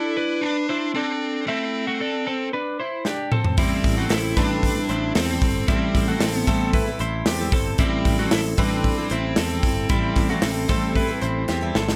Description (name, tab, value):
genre	jangly indie pop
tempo	114 BPM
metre	4/4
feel	straight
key	unclear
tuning	A4 = 443 Hz
part	dark smooth lead guitar	melody	0.0-11.4 s	C4 to E4	-29 LUFS	equal	overdrive, slapback echo
part	twelve-string electric guitar	arpeggios	0.0-12.0 s	G3 to C5	-29 LUFS	equal	none
part	modern studio drum kit	drums	3.0-12.0 s	hi-hat, kick drum, snare drum, toms	-25 LUFS	equal	none
part	picked twelve-string acoustic guitar	accompaniment	3.6-12.0 s	A2 to A4	-30 LUFS	equal	none
part	modern bright picked electric bass	bass	3.6-12.0 s	G1 to E2	-29 LUFS	equal	none
part	group handclap	percussion	4.1-11.6 s	none	-40 LUFS	equal	none
room	moderate studio ambience, RT60 0.5 s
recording	none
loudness	-22 LUFS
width	mono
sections	0.0-12.0 A section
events	drum fill 3.1-3.6, 11.5-12.0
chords	0.0 Dsus2; 3.6 Am7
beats	0.42 0.95 | 1.47 2.00 2.53 3.05 | 3.58 4.10 4.63 5.16 | 5.68 6.21 6.74 7.26 | 7.79 8.32 8.85 9.37 | 9.90 10.43 10.96 11.48